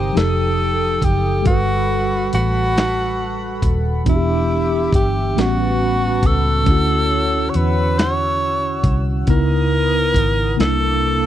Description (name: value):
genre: slow six-eight R&B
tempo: 46 BPM (dotted quarters)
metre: 6/8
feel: straight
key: D major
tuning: A4 = 443 Hz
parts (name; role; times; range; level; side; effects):
- clear tenor saxophone; melody; 0.0-11.3 s; E4 to C#5; -20 LUFS; equal; none
- mellow tine electric piano; accompaniment; 0.0-11.3 s; A2 to B4; -22 LUFS; equal; medium stereo tremolo
- chorused pulse-width pad; sustained chords; 0.0-11.3 s; Bb3 to E6; -28 LUFS; left 3 dB; none
- vintage muted fingered electric bass; bass; 0.0-11.3 s; Eb1 to E2; -20 LUFS; equal; none
- dusty soul sampler-style drum kit; drums; 0.2-10.8 s; hi-hat, kick drum, snare drum; -18 LUFS; equal; none
room: little or no reverb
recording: dry, close 1970s-style studio recording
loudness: -15 LUFS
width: side -12 dB against mid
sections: 0.0-11.3 A section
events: none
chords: 0.1 F9; 1.5 Gmaj9; 4.1 Em7; 5.4 A13; 6.7 Dmaj9; 9.3 C#m9; 10.6 C13